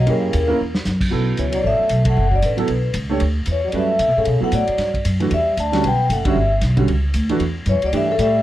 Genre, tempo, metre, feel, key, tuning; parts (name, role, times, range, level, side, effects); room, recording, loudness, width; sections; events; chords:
modal jazz; 229 BPM; 4/4; swing 59% on 8ths; B minor; A4 = 442 Hz
vibraphone with soft mallets; melody; 0.0-8.4 s; A4 to A5; -20 LUFS; left 2 dB; plate reverb
trombone with cup mute; second line; 0.0-8.4 s; Db3 to D4; -28 LUFS; right 5 dB
upright bass; bass; 0.0-8.4 s; F#1 to C#3; -20 LUFS; equal
dark grand piano; accompaniment; 0.1-8.1 s; D3 to C#5; -22 LUFS; right 4 dB
vintage drum kit; drums; 0.1-8.3 s; crash cymbal, hi-hat, kick drum, ride cymbal, snare drum; -27 LUFS; equal
light reverb; dark, warm production; -16 LUFS; side -14 dB against mid
0.0-1.1 A section; 1.1-8.4 B section
drum fill 0.6; band accent 2.0, 6.2
0.1 Gb7b9; 1.1 Bm11